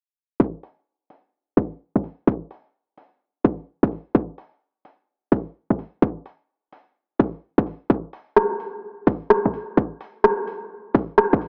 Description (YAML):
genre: UK garage, two-step garage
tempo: 128 BPM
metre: 4/4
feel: swing 64% on 16ths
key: none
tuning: none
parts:
  - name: electronic kick drum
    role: drums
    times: 0.4-11.4 s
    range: none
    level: -21 LUFS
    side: equal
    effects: none
  - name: punchy analog drum machine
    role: drums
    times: 0.6-11.5 s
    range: hi-hat, rim click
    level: -21 LUFS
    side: equal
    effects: none
room: moderate lush hall reverb, RT60 1.6 s, digital ambience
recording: dry, gritty hardware recording, cassette tape, low-pass filter, small speaker sound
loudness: -23 LUFS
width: mono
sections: 0.4-11.5 A section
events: filter sweep 0.4-11.5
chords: none